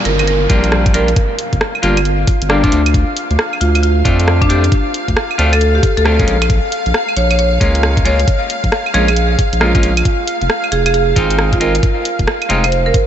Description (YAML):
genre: UK garage, two-step garage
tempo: 135 BPM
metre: 4/4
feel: swing 63% on 16ths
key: G minor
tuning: A4 = 440 Hz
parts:
  - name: soft string machine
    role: sustained chords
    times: 0.0-13.1 s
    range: F5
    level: -22 LUFS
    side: left 1 dB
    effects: ensemble chorus, sidechain pumping
  - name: semi-hollow electric guitar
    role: stabs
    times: 0.0-12.6 s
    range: G3 to F4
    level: -20 LUFS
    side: equal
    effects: ping-pong delay
  - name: downlifter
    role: sound effects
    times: 0.0-2.9 s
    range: none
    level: -26 LUFS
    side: equal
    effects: none
  - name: marimba with medium hard mallets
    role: melody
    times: 0.1-13.0 s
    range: D4 to Db5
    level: -18 LUFS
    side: right 2 dB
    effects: ping-pong delay
  - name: saturated sub bass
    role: bass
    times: 0.1-12.9 s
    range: F1 to F2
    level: -15 LUFS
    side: equal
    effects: sidechain pumping
  - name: garage drum kit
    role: drums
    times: 0.1-13.1 s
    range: claves, finger snaps, hi-hat, rim click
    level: -20 LUFS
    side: right 1 dB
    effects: none
  - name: electronic kick drum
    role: drums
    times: 0.5-13.1 s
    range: none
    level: -15 LUFS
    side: equal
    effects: overdrive
room: light reverb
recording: nothing above 7.9 kHz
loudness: -11 LUFS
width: side -10 dB against mid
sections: 0.0-13.1 A section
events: none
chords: 0.0 Gm7; 2.7 Dm7; 6.3 Bbm7; 10.1 Fm7